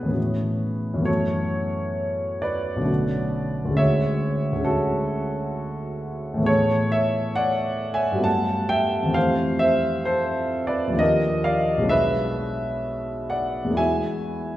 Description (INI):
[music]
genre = classical, impressionist solo piano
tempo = 66 BPM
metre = 3/4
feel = rubato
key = unclear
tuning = A4 = 440 Hz
[part]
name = warm grand piano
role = solo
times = 0.0-14.6 s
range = B1 to A5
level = -21 LUFS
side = equal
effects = none
[sound]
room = wet recital hall reverb, RT60 1.9 s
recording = heard from further back in the room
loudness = -21 LUFS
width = side -14 dB against mid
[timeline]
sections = 0.0-14.6 A section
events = none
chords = 0.2 A69; 1.1 F#m7; 2.9 Bm9; 3.8 Dmaj7#11; 6.5 Amaj9; 8.3 Gmaj9; 9.2 Fmaj9; 11.0 D#maj9; 11.9 Bm6; 13.8 Eadd9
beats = 0.17 | 1.08 1.98 2.89 | 3.79 4.67 5.56 | 6.48 7.37 8.26 | 9.16 10.07 11.00 | 11.92 12.85 13.79